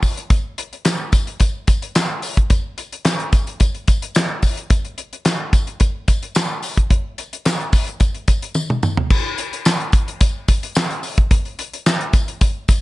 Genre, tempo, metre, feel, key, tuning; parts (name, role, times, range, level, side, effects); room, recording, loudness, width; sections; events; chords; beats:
funk; 109 BPM; 4/4; straight
damped 70s drum kit; drums; 0.0-12.8 s; crash cymbal, handclaps, hi-hat, kick drum, snare drum, toms; -16 LUFS; equal
tambourine; percussion; 0.0-12.8 s; -31 LUFS; left 3 dB
light reverb; nothing above 10.7 kHz; -16 LUFS; side -19 dB against mid
0.0-9.1 A section; 9.1-12.8 B section
drum fill 8.6-9.1
| 0.30 0.85 1.40 1.95 | 2.50 3.05 3.60 4.16 | 4.71 5.25 5.81 6.36 | 6.91 7.46 8.01 8.56 | 9.11 9.66 10.21 10.76 | 11.31 11.86 12.41